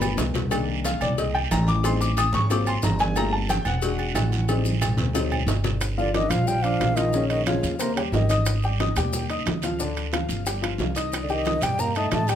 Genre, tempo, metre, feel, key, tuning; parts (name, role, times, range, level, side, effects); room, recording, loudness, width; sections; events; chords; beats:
Afro-Cuban jazz; 181 BPM; 4/4; straight; G minor; A4 = 440 Hz
warm upright piano; accompaniment; 0.0-12.4 s; Db3 to Eb6; -27 LUFS; left 3 dB
upright bass; bass; 0.0-12.4 s; E1 to A2; -26 LUFS; equal
agogo bells and timbales; percussion; 0.0-12.4 s; -31 LUFS; right 6 dB
bongos and cowbell; percussion; 0.0-12.4 s; -32 LUFS; left 4 dB
maracas; percussion; 0.0-12.4 s; -36 LUFS; left 4 dB
guiro; percussion; 0.2-12.4 s; -36 LUFS; right 9 dB
congas; percussion; 0.3-12.4 s; -32 LUFS; right 1 dB
breathy mellow concert flute; melody; 6.0-8.4, 11.2-12.4 s; C5 to Bb5; -27 LUFS; left 1 dB; plate reverb
breathy trombone; second line; 6.0-8.4, 11.2-12.4 s; C3 to Bb3; -30 LUFS; right 6 dB
light reverb; -21 LUFS; side -9 dB against mid
0.0-5.8 A section; 5.8-12.4 B section
drum fill 0.0-0.5, 4.5-5.8; upright piano solo 0.0-5.8
0.0 G7; 0.5 Cm9; 1.8 Am7b5; 2.5 Ab13; 3.2 Gm9; 3.8 E7; 4.5 Am7b5; 5.1 D7b9; 5.8 Gm7; 7.1 Bbm; 7.8 Eb; 8.5 Ab5; 9.8 Dmadd11; 10.5 Cmadd11/G; 11.1 Cm
0.18 | 0.51 0.84 1.18 1.51 | 1.84 2.17 2.50 2.83 | 3.16 3.49 3.83 4.16 | 4.49 4.82 5.15 5.48 | 5.81 6.14 6.48 6.81 | 7.14 7.47 7.80 8.14 | 8.47 8.80 9.13 9.46 | 9.80 10.13 10.46 10.79 | 11.12 11.46 11.79 12.12